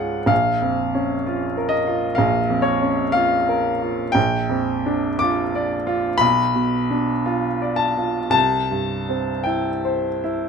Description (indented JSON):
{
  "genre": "classical, romantic nocturne for solo piano",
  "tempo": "50-66 BPM",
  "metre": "4/4",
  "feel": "rubato",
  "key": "unclear",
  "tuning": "A4 = 440 Hz",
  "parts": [
    { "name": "clear baby grand piano", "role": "solo", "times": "0.0-10.5 s", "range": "Bb1 to D6", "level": "-18 LUFS", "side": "equal", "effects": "none" }
  ],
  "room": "light reverb",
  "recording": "close, detailed microphones",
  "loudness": "-18 LUFS",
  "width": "side -6 dB against mid",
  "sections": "0.0-10.5 A section",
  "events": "none",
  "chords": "0.3 Bbm; 4.2 Gm7/Bb; 6.2 Bm7b5; 8.3 C"
}